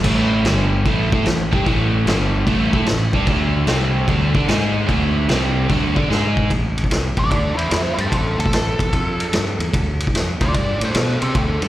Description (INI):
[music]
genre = blues rock power trio and southern rock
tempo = 148 BPM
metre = 4/4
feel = swing 66% on 8ths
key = A minor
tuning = A4 = 440 Hz
[part]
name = crunchy overdriven guitar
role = riff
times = 0.0-6.5 s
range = G2 to D5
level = -19 LUFS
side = right 1 dB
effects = none
[part]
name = fuzz fingered electric bass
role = bass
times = 0.0-11.7 s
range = G1 to D3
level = -21 LUFS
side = equal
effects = overdrive
[part]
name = vintage drum kit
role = drums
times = 0.0-11.7 s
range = crash cymbal, kick drum, ride cymbal, snare drum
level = -21 LUFS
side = equal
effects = none
[part]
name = dark smooth lead guitar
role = melody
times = 7.2-11.7 s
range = C4 to D5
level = -23 LUFS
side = equal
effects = wah, overdrive, slapback echo, digital delay
[sound]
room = little or no reverb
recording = live gig heard through the venue's PA, recital hall reverb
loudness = -16 LUFS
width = side -14 dB against mid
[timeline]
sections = 0.0-6.5 A section; 6.5-11.7 B section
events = drum fill 6.1-6.5; lead electric guitar solo 6.5-11.7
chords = 0.0 A5; 0.4 G5; 0.9 A5; 2.1 G5; 2.5 A5; 3.3 D5; 3.7 C5; 4.1 D5; 4.5 G#5; 4.9 D5; 5.3 C5; 5.7 D5; 6.1 G#5; 6.5 Am; 9.7 Dm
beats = | 0.04 0.45 0.85 1.26 | 1.66 2.06 2.47 2.87 | 3.27 3.68 4.08 4.49 | 4.89 5.29 5.70 6.10 | 6.50 6.91 7.31 7.72 | 8.12 8.53 8.93 9.34 | 9.74 10.14 10.55 10.95 | 11.36